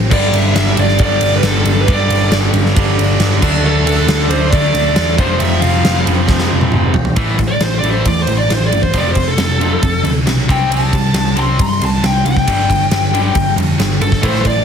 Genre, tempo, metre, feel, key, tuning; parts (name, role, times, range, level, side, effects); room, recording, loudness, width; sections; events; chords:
hard rock; 136 BPM; 4/4; straight; A4 = 441 Hz
tonewheel organ; sustained chords; 0.0-7.2, 14.2-14.6 s; F3 to G5; -26 LUFS; equal; slow rotary speaker, overdrive, plate reverb
hollow-body short-scale picked electric bass; bass; 0.0-14.6 s; F1 to G2; -17 LUFS; equal
bluesy overdriven lead guitar; melody; 0.1-14.6 s; A4 to C6; -18 LUFS; left 1 dB; distortion, analog delay
distorted electric guitar; riff; 0.1-14.6 s; F2 to D4; -21 LUFS; left 10 dB; distortion
overdriven electric guitar; riff; 0.1-14.6 s; F2 to D4; -20 LUFS; right 12 dB
huge arena drum kit; drums; 0.1-14.6 s; crash cymbal, kick drum, ride cymbal, snare drum, toms; -16 LUFS; equal
light reverb; heavily compressed radio sound, multiband compression; -11 LUFS; side -7 dB against mid
0.0-7.2 A section; 7.2-14.6 B section
drum fill 6.3-7.2; lead electric guitar solo 7.2-14.6
0.1 G5; 3.4 D5; 5.2 F5; 7.2 A5; 8.9 F; 10.5 C5; 12.5 G5